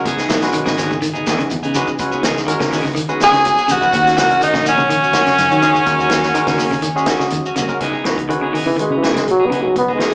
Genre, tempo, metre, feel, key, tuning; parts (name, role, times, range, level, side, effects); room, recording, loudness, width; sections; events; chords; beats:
afrobeat; 124 BPM; 4/4; straight; C# dorian; A4 = 439 Hz
barky tine electric piano; accompaniment; 0.0-10.1 s; G#3 to C#5; -21 LUFS; equal; medium stereo tremolo
clean electric guitar; stabs; 0.1-10.1 s; E3 to G#4; -22 LUFS; equal; slapback echo
fingered electric bass; bass; 0.1-10.0 s; G#1 to D#3; -24 LUFS; equal
vintage drum kit; drums; 0.1-10.1 s; hi-hat, kick drum, snare drum; -23 LUFS; equal
shekere; percussion; 0.1-7.8 s; -28 LUFS; equal
semi-hollow electric guitar; arpeggios; 0.3-10.1 s; C#3 to E3; -23 LUFS; equal
congas; percussion; 0.3-7.7 s; -27 LUFS; equal
raspy tenor saxophone; melody; 3.2-7.3 s; C#4 to G#4; -14 LUFS; equal
breathy alto saxophone; second line; 3.2-7.3 s; C#5 to G#5; -21 LUFS; equal
warm trombone; melody; 8.7-10.1 s; E3 to B3; -15 LUFS; equal; slapback echo
moderate club reverb, RT60 0.6 s; live gig heard through the venue's PA, club reverb, small speaker sound; -13 LUFS; side -33 dB against mid
0.0-7.8 A section; 7.8-10.1 B section
trombone solo 7.8-10.1
0.1 C#m9; 3.9 D#m7; 7.8 C#m9
| 0.06 0.54 1.03 1.51 | 1.99 2.48 2.96 3.45 | 3.93 4.42 4.90 5.38 | 5.87 6.36 6.84 7.33 | 7.81 8.30 8.79 9.28 | 9.76